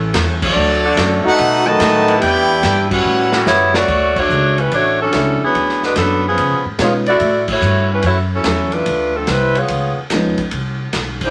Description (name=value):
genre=jazz, big band swing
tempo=144 BPM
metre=4/4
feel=swing 67% on 8ths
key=D major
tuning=A4 = 439 Hz
part: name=clear saxophone section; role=sustained chords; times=0.0-3.9 s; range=C#3 to A4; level=-25 LUFS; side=equal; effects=none
part: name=upright bass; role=bass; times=0.0-11.3 s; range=A1 to C#3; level=-23 LUFS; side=equal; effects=none
part: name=swinging big-band drum kit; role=drums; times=0.1-11.3 s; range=crash cymbal, hi-hat, kick drum, ride cymbal, snare drum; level=-24 LUFS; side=equal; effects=none
part: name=brilliant trumpet section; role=melody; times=0.4-3.5 s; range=A3 to A5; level=-19 LUFS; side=equal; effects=none
part: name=mellow trombone section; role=second line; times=0.4-3.5 s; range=D#3 to G4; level=-18 LUFS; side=equal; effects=none
part: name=mellow saxophone section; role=melody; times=3.5-11.3 s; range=F3 to D5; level=-17 LUFS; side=equal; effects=none
part: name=warm baby grand piano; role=accompaniment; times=5.1-10.4 s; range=E#3 to F#4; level=-22 LUFS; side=equal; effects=none
room=wet studio ambience, RT60 0.5 s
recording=none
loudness=-15 LUFS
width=mono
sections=0.0-3.9 A section; 3.9-11.3 B section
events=band accent 0.4, 2.8, 4.1, 7.4, 11.1; drum fill 3.1-3.9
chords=0.0 A; 0.6 Dmaj7; 1.4 B7; 2.2 Em7; 3.1 A13; 3.9 Dmaj7; 5.5 G#m7b5; 6.4 C#7; 7.2 F#m7; 8.9 Dm7; 9.7 C#9; 10.5 Cmaj7(no3)